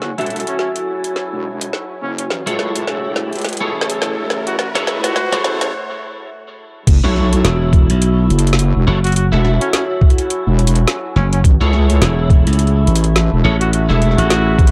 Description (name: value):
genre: glitch hop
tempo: 105 BPM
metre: 4/4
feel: swing 58% on 16ths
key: F# minor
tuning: A4 = 440 Hz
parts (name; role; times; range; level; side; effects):
- warm trumpet; melody; 0.0-5.6, 9.0-14.7 s; C#4 to F#4; -26 LUFS; equal; delay
- wobble bass; bass; 0.0-14.7 s; E1 to C#2; -19 LUFS; equal; chorus, overdrive, high-pass filter
- drum and bass drum kit; drums; 0.0-14.7 s; crash cymbal, hi-hat, snare drum; -24 LUFS; equal; high-pass filter on hats, high-pass filter on snare, high-pass filter on cymbals, high-pass filter on room
- riser; sound effects; 0.9-5.7 s; none; -31 LUFS; equal; none
- deep dark ambient pad; texture; 0.0-14.7 s; A3 to B5; -31 LUFS; equal; chorus, built-in reverb, sidechain pumping
- electric guitar at the edge of break-up; stabs; 0.2-14.7 s; E4 to E5; -24 LUFS; equal; ensemble chorus, sidechain pumping, low-pass filter, delay
- electronic kick drum; drums; 6.9-14.7 s; none; -13 LUFS; equal; none
- glassy slap bass; bass; 7.4-14.6 s; E1 to C#2; -16 LUFS; equal; none
room: light reverb, digital ambience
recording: dark, warm production, high-pass filter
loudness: -15 LUFS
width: mono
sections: 0.0-6.9 A section; 6.9-14.7 B section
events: build-up 0.0-6.9; drum fill 0.0-5.7; filter sweep on clean electric guitar 0.0-6.9; riser 1.0-5.7; break 5.7-6.9; drop 6.9-14.7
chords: 0.0 F#m7